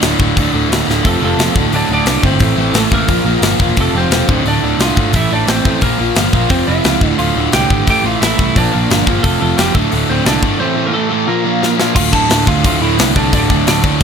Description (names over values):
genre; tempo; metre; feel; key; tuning
punk rock; 176 BPM; 4/4; straight; D minor; A4 = 440 Hz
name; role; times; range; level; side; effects
crunchy overdriven guitar; riff; 0.0-14.0 s; D2 to Bb3; -17 LUFS; right 12 dB; none
raw garage guitar; riff; 0.0-14.0 s; D2 to Bb3; -18 LUFS; left 17 dB; overdrive
picked electric bass; bass; 0.0-14.0 s; D1 to D2; -19 LUFS; left 1 dB; none
tight metal drum kit; drums; 0.0-14.0 s; crash cymbal, hi-hat, kick drum, snare drum; -16 LUFS; left 1 dB; none
lightly driven lead guitar; melody; 1.1-14.0 s; G3 to A5; -19 LUFS; right 2 dB; none
room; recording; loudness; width
light reverb; none; -11 LUFS; side -7 dB against mid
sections
0.0-1.0 A section; 1.0-12.0 B section; 12.0-14.0 C section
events
drum fill 0.9, 11.6-12.0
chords
0.0 D5; 1.0 F; 1.6 D5; 2.4 Am; 3.1 Bb5; 3.8 F; 4.3 Dm; 5.1 Am; 5.8 Bb5; 6.5 F5; 7.0 Dm; 7.9 Am; 8.6 Bb; 9.2 F; 9.7 D5; 10.6 Am; 11.3 Bb5; 12.0 Dm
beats
0.01 0.36 0.70 | 1.04 1.38 1.72 2.07 | 2.41 2.75 3.09 3.43 | 3.77 4.12 4.46 4.80 | 5.14 5.48 5.82 6.17 | 6.51 6.85 7.19 7.53 | 7.87 8.21 8.55 8.90 | 9.24 9.58 9.92 10.26 | 10.60 10.94 11.28 11.62 | 11.96 12.30 12.64 12.98 | 13.32 13.66 14.00